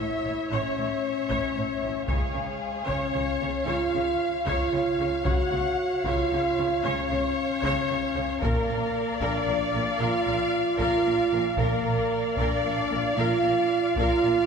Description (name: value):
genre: cinematic, epic orchestral film score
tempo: 76 BPM (dotted quarters)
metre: 12/8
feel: straight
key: unclear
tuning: A4 = 435 Hz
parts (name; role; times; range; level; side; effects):
- clear symphonic violin section; melody; 0.0-14.5 s; G#4 to F#5; -31 LUFS; left 3 dB; none
- rich symphonic violin section; second line; 0.0-14.5 s; C#5 to E#5; -34 LUFS; left 1 dB; none
- clear symphonic viola section; accompaniment; 0.0-14.5 s; Bb4 to D5; -32 LUFS; equal; none
- mellow French horn section; sustained chords; 0.0-14.5 s; G#3 to F#4; -27 LUFS; right 1 dB; none
- clear symphonic double bass section; bass; 0.0-14.3 s; A1 to C#2; -34 LUFS; right 2 dB; none
- warm symphonic cello section; bass; 0.0-14.3 s; A2 to C#3; -35 LUFS; right 1 dB; none
- taiko ensemble; drums; 1.3-14.4 s; none; -33 LUFS; equal; none
room: wet scoring stage reverb, RT60 2.0 s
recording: heard from further back in the room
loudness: -23 LUFS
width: side -6 dB against mid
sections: 0.0-14.5 A section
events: none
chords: 0.0 A; 2.1 C#; 8.4 Bb